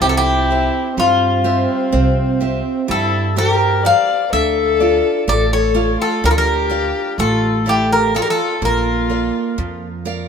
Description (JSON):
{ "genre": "greek folk, Greek bouzouki band", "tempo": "126 BPM (eighths)", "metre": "9/8", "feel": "straight", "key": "unclear", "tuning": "A4 = 440 Hz", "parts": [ { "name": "Greek bouzouki", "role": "melody", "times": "0.0-9.7 s", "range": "F4 to F5", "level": "-18 LUFS", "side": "left 2 dB", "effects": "none" }, { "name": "dark violin", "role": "second line", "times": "0.0-9.7 s", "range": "C4 to D5", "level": "-20 LUFS", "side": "left 5 dB", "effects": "none" }, { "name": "picked steel-string acoustic guitar", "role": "accompaniment", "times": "0.0-10.3 s", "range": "F3 to G5", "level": "-22 LUFS", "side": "right 5 dB", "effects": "none" }, { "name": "upright bass", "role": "bass", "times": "0.0-10.3 s", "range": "A1 to G2", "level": "-20 LUFS", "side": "right 1 dB", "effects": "none" } ], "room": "moderate plate reverb, RT60 3.8 s", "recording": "minimal, uncompressed stereo recording", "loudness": "-14 LUFS", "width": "side -7 dB against mid", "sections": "0.0-10.3 A section", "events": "none", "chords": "0.0 C; 4.3 Dm; 8.6 Bb", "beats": "| 0.02 0.49 0.97 1.45 1.93 2.41 2.89 3.37 3.85 | 4.33 4.80 5.28 5.76 6.24 6.72 7.20 7.67 8.15 | 8.63 9.11 9.58 10.06" }